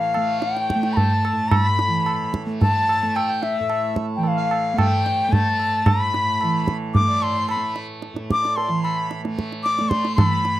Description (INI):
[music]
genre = indian classical, Hindustani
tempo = 111 BPM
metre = 4/4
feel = straight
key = A raga darbari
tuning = A4 = 440 Hz
[part]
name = bright reedy bansuri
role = melody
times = 0.0-10.6 s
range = E5 to D6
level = -21 LUFS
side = left 3 dB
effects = none
[part]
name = hand-pumped harmonium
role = second line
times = 0.0-10.6 s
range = D5 to C6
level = -32 LUFS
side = right 6 dB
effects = none
[part]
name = tanpura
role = drone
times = 0.0-10.6 s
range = A2 to A3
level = -26 LUFS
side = right 3 dB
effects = stereo widening
[part]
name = tabla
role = percussion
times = 0.1-10.6 s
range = none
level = -22 LUFS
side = right 2 dB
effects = none
[sound]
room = little or no reverb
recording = dry, close 1970s-style studio recording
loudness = -18 LUFS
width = side -14 dB against mid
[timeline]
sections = 0.0-10.2 A section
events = none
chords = none